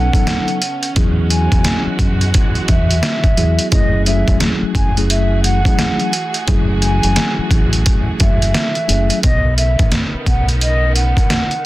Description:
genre	hip hop, boom-bap hip-hop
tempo	87 BPM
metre	4/4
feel	swing 62% on 16ths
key	F# dorian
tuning	A4 = 440 Hz
part	breathy mellow concert flute	melody	0.0-11.7 s	D#5 to G#5	-22 LUFS	equal	high-pass filter, low-pass filter
part	mellow tine electric piano	accompaniment	0.0-9.2 s	F#3 to A4	-21 LUFS	left 2 dB	medium stereo tremolo, cassette tape, high-pass filter, low-pass filter
part	warm studio string section	sustained chords	0.0-11.7 s	C#3 to G#4	-26 LUFS	right 2 dB	high-pass filter, low-pass filter
part	deep dub fingered electric bass	bass	0.0-11.1 s	E1 to F#2	-16 LUFS	equal	none
part	trip hop sampler-style drum kit	drums	0.1-11.6 s	hi-hat, kick drum, snare drum	-15 LUFS	equal	overdrive
room	little or no reverb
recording	dense, heavily limited modern master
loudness	-13 LUFS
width	side -17 dB against mid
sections	0.0-11.7 A section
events	none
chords	0.0 B9; 1.0 Eadd9; 3.7 F#m9; 9.2 B9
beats	0.27 | 0.96 1.65 2.34 3.03 | 3.72 4.41 5.10 5.79 | 6.48 7.17 7.86 8.55 | 9.24 9.93 10.62 11.30

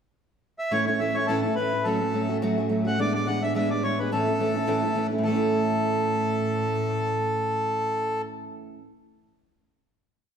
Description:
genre	celtic folk, Celtic reel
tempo	213 BPM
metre	4/4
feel	swing 55% on 8ths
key	A major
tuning	A4 = 440 Hz
part	accordion	melody	0.6-8.2 s	A4 to F#5	-26 LUFS	equal	none
part	fingerpicked steel-string acoustic guitar	accompaniment	0.7-8.9 s	A2 to F#4	-26 LUFS	right 2 dB	none
part	rich cello	drone	0.7-8.2 s	A2	-34 LUFS	left 3 dB	none
room	moderate recital hall reverb, RT60 1.6 s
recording	none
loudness	-23 LUFS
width	side -7 dB against mid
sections	0.0-0.7 pickup bar; 0.7-5.2 A section; 5.2-7.5 final chord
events	none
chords	0.0 N.C.; 0.7 A; 1.9 F#m; 3.0 E7; 4.1 A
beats	0.15 0.43 | 0.72 1.00 1.29 1.57 | 1.85 2.14 2.42 2.70 | 2.99 3.27 3.55 3.83 | 4.11 4.39 4.67 4.95 | 5.23 5.51 5.79 6.07 | 6.34 6.62 6.90 7.18

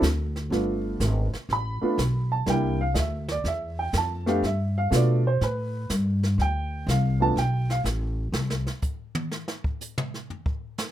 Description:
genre	jazz, small-group swing and bop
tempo	123 BPM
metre	4/4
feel	swing 68% on 8ths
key	G mixolydian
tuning	A4 = 443 Hz
part	upright bass	bass	0.0-8.7 s	G1 to B2	-25 LUFS	equal	none
part	jazz brush drum kit	drums	0.0-10.9 s	brushed snare drum, hi-hat, kick drum, snare drum, toms	-31 LUFS	right 1 dB	none
part	warm upright piano	accompaniment	0.5-7.8 s	G3 to B5	-26 LUFS	right 2 dB	none
room	little or no reverb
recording	close, detailed microphones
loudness	-24 LUFS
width	side -12 dB against mid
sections	0.5-10.9 A section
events	drum solo 8.3-10.9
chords	0.0 N.C.; 0.5 G9; 2.5 C9; 4.4 G9; 6.4 Dm7; 7.4 Gadd9; 8.3 N.C.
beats	0.03 | 0.52 1.01 1.50 1.99 | 2.48 2.96 3.45 3.94 | 4.43 4.92 5.41 5.90 | 6.38 6.87 7.36 7.85 | 8.34 8.83 9.31 9.80 | 10.29 10.78

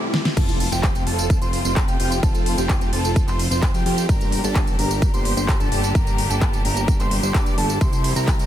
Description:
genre	EDM, festival progressive house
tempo	129 BPM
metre	4/4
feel	straight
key	F major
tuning	A4 = 437 Hz
part	rich studio string section	sustained chords	0.0-8.5 s	C3 to G4	-31 LUFS	left 1 dB	sidechain pumping
part	riser and impact	sound effects	0.0-2.2 s	none	-30 LUFS	right 1 dB	none
part	pop drum kit	drums	0.1-8.5 s	crash cymbal, handclaps, hi-hat, ride cymbal, snare drum, tambourine	-27 LUFS	equal	none
part	wide unison lead	arpeggios	0.4-8.5 s	G5 to D6	-29 LUFS	equal	sidechain pumping, dub echo
part	supersaw chords	riff	0.4-8.5 s	C4 to D5	-27 LUFS	right 2 dB	phaser, sidechain pumping, dub echo
part	fat analog bass	bass	0.4-8.5 s	F1 to G2	-25 LUFS	equal	sidechain pumping
part	electronic kick drum	drums	0.4-8.4 s	none	-20 LUFS	equal	overdrive
room	little or no reverb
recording	dense, heavily limited modern master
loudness	-18 LUFS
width	side -11 dB against mid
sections	0.4-8.5 A section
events	break 0.0-0.4; riser 0.0-0.4; drum fill 0.1; drop 0.4-8.5; impact 0.4-2.2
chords	0.4 F; 4.1 Gm; 7.8 C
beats	| 0.37 0.83 1.30 1.76 | 2.23 2.69 3.16 3.62 | 4.09 4.55 5.02 5.49 | 5.95 6.42 6.88 7.35 | 7.81 8.28

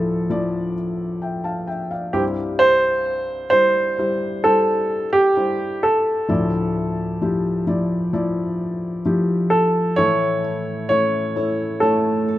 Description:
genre	pop ballad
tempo	65 BPM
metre	4/4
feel	straight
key	D minor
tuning	A4 = 440 Hz
part	clear baby grand piano	melody	0.0-12.4 s	G4 to C#5	-18 LUFS	right 1 dB	none
part	felt-muted upright piano	accompaniment	0.0-12.4 s	C2 to A5	-22 LUFS	left 2 dB	none
part	fingerpicked steel-string acoustic guitar	arpeggios	10.0-12.4 s	A2 to A4	-27 LUFS	right 5 dB	none
room	light reverb, small room reverb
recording	rough home demo mix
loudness	-18 LUFS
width	side -14 dB against mid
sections	0.0-12.4 A section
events	none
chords	0.0 Dmadd9; 2.1 C; 6.3 Dmadd9; 10.0 A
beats	0.75 1.67 | 2.60 3.52 4.44 5.36 | 6.29 7.21 8.13 9.06 | 9.98 10.90 11.82

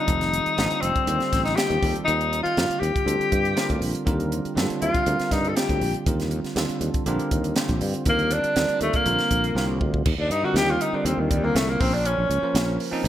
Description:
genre	electric jazz fusion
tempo	120 BPM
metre	4/4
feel	straight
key	unclear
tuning	A4 = 440 Hz
part	breathy tenor saxophone	melody	0.0-12.8 s	Eb3 to A4	-23 LUFS	left 2 dB	none
part	barky tine electric piano	accompaniment	0.0-13.1 s	D3 to C5	-28 LUFS	right 2 dB	lush chorus
part	sustaining fretless electric bass	bass	0.1-13.1 s	F1 to G2	-26 LUFS	equal	none
part	crisp fusion drum kit	drums	0.1-13.1 s	crash cymbal, hi-hat, kick drum, snare drum	-27 LUFS	equal	gated reverb
room	moderate plate reverb, RT60 1.4 s, studio reverb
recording	bright 1980s-style digital production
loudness	-20 LUFS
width	side -12 dB against mid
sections	0.0-10.1 A section; 10.1-13.1 B section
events	drum fill 9.6-10.1; tenor saxophone solo 10.1-13.1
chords	0.0 F7; 1.8 Cm9; 10.1 Eb6; 11.8 Bbmadd9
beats	| 0.08 0.58 1.08 1.58 | 2.08 2.58 3.07 3.57 | 4.07 4.57 5.07 5.57 | 6.07 6.57 7.07 7.56 | 8.06 8.56 9.06 9.56 | 10.06 10.56 11.06 11.56 | 12.05 12.55 13.05

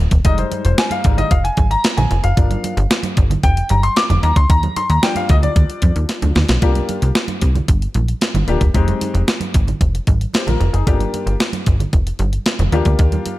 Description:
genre	early-eighties boogie funk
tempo	113 BPM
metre	4/4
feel	straight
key	F dorian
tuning	A4 = 443 Hz
part	plucky analog bass	bass	0.0-13.2 s	Eb1 to F2	-16 LUFS	equal	none
part	clean 12-bit digital drum machine	drums	0.1-13.4 s	hi-hat, kick drum, snare drum	-16 LUFS	equal	gated reverb
part	clear grand piano	accompaniment	0.2-13.4 s	F3 to D6	-21 LUFS	left 3 dB	none
part	congas	percussion	0.2-13.4 s	none	-26 LUFS	right 5 dB	none
room	studio reverb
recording	none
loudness	-14 LUFS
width	side -17 dB against mid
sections	0.0-6.6 A section; 6.6-13.4 B section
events	grand piano solo 0.0-6.6; drum fill 6.1-6.6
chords	0.2 Fm9; 2.4 Gm7; 4.2 Ebmaj7; 6.6 C9sus4; 8.7 Fm9; 10.9 Gm7; 12.7 Ebmaj7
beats	| 0.25 0.78 1.31 1.84 | 2.37 2.90 3.44 3.97 | 4.50 5.03 5.56 6.09 | 6.62 7.15 7.68 8.21 | 8.74 9.28 9.81 10.34 | 10.87 11.40 11.93 12.46 | 12.99

